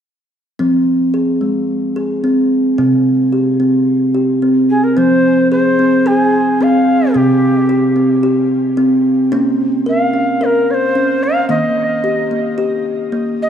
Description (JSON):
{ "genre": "world meditative, meditative tuned percussion", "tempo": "110 BPM", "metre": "4/4", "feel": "swing 55% on 16ths", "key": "F minor", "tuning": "A4 = 440 Hz", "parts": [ { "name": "kalimba", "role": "arpeggios", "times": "0.6-13.5 s", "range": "C3 to Bb4", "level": "-12 LUFS", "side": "equal", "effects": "none" }, { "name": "breathy reedy Native American-style cedar flute", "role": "melody", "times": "4.7-13.5 s", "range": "G4 to F5", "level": "-17 LUFS", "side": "equal", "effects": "shimmer reverb, tape echo" } ], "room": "wet echo chamber reverb, RT60 1.2 s, studio reverb", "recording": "dark, warm production", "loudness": "-12 LUFS", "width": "side -8 dB against mid", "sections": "0.6-5.0 A section; 5.0-13.5 B section", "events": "none", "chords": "0.6 Fm; 2.8 C5; 5.0 Fm; 7.1 C5; 9.3 Bbm; 11.5 Eb", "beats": "| 0.59 1.14 1.69 2.23 | 2.78 3.33 3.88 4.42 | 4.97 5.51 6.06 6.60 | 7.15 7.69 8.24 8.78 | 9.33 9.87 10.42 10.96 | 11.50 12.05 12.59 13.13" }